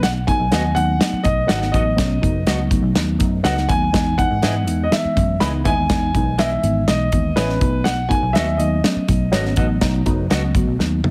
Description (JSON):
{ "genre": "uptempo 1960s-style soul", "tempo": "122 BPM", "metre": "4/4", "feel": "straight", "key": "unclear", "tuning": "A4 = 441 Hz", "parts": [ { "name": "clear grand piano", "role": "melody", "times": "0.0-11.1 s", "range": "B4 to B5", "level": "-25 LUFS", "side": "equal", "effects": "none" }, { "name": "bright reed electric piano", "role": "accompaniment", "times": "0.0-11.1 s", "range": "E3 to F#4", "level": "-25 LUFS", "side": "equal", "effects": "overdrive, phaser" }, { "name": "vintage muted picked electric bass", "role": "bass", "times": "0.0-11.1 s", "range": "F#1 to G#2", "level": "-24 LUFS", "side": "equal", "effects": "none" }, { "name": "natural country drum kit", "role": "drums", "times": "0.0-11.1 s", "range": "hi-hat, kick drum, snare drum, toms", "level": "-23 LUFS", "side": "equal", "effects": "none" }, { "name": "semi-hollow electric guitar", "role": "stabs", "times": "0.5-10.4 s", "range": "B3 to D#5", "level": "-31 LUFS", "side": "equal", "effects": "slapback echo" } ], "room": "moderate spring reverb, RT60 1.5 s", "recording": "heavily compressed radio sound", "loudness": "-18 LUFS", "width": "mono", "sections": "0.0-11.1 A section", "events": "drum fill 10.8-11.1", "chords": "0.0 B7; 3.9 Emaj7; 7.6 B7" }